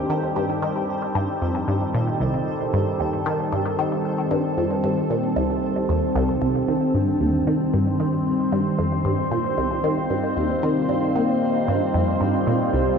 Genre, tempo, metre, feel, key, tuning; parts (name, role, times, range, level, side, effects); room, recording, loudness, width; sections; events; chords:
ambient; 114 BPM; 4/4; straight; C dorian; A4 = 440 Hz
evolving wavetable pad; sustained chords; 0.0-13.0 s; Eb3 to C5; -23 LUFS; equal; phaser, built-in reverb
resonant blip pluck; riff; 0.0-12.9 s; C2 to Eb3; -24 LUFS; equal; phaser, tape echo
pulsing gated texture; texture; 0.0-13.0 s; C4 to C5; -38 LUFS; right 3 dB; chorus, built-in reverb
soft octave-layered synth lead; melody; 6.4-13.0 s; G3 to G4; -26 LUFS; left 1 dB; chorus, phaser, tape echo
wet huge ambient reverb, RT60 7.5 s; nothing above 8.0 kHz; -20 LUFS; side -6 dB against mid
0.0-13.0 A section
fade-in on synth texture 0.0-13.0
0.0 Cm